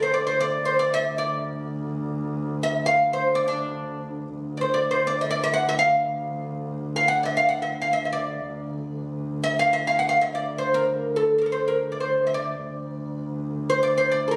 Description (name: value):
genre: Arabic maqam ensemble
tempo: free time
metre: none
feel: none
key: D maqam saba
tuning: A4 = 440 Hz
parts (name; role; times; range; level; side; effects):
- oud; melody; 0.0-14.4 s; D4 to F#5; -24 LUFS; equal; none
- warm double bass; drone; 0.0-14.4 s; D2; -34 LUFS; equal; none
room: moderate recital hall reverb, RT60 1.5 s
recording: recorded on a phone in the room, studio reverb, compression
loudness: -24 LUFS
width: mono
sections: 0.0-4.4 A section; 4.4-14.4 A section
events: none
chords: none